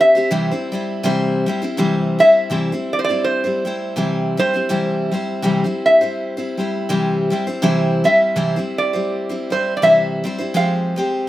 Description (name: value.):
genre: acoustic folk duo or small band.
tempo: 82 BPM.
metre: 4/4.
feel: swing 57% on 8ths.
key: C major.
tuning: A4 = 439 Hz.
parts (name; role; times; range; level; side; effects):
metal-body resonator slide guitar; melody; 0.0-11.3 s; C5 to F5; -15 LUFS; equal; none.
picked steel-string acoustic guitar; accompaniment; 0.0-11.3 s; C3 to C5; -19 LUFS; left 1 dB; none.
room: little or no reverb.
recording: recorded outdoors, with no room sound.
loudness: -16 LUFS.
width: side -14 dB against mid.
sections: 0.0-1.8 A section; 1.8-11.3 B section.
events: resonator guitar played with a steel bar solo 0.0-1.8.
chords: 0.3 C; 10.6 Fmadd9.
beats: 0.30 1.03 | 1.77 2.50 3.23 3.96 | 4.70 5.43 6.16 6.89 | 7.63 8.36 9.09 9.83 | 10.56.